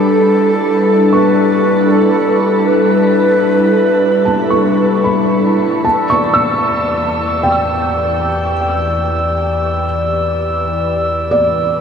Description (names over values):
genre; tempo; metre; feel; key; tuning
ambient; 77 BPM; 4/4; straight; unclear; A4 = 440 Hz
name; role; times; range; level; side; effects
bright alto flute; melody; 0.0-5.0 s; A4 to B4; -17 LUFS; equal; tape echo
airy breathy pad; sustained chords; 0.0-11.8 s; E3 to B4; -14 LUFS; equal; chorus
felt-muted upright piano; arpeggios; 0.0-11.8 s; D5 to E6; -18 LUFS; right 1 dB; tape echo
warm sub bass; bass; 5.8-11.8 s; E2; -23 LUFS; right 1 dB; none
glass harmonica; texture; 5.8-11.8 s; D5 to E6; -18 LUFS; left 2 dB; none
room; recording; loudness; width
wet shimmer reverb, RT60 6.2 s; dark, warm production, nothing above 10.6 kHz; -11 LUFS; side -7 dB against mid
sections
0.0-5.8 A section; 5.8-11.8 B section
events
fade-in on analog synth pad 5.8-11.8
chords
0.0 Dsus2/G; 5.8 Em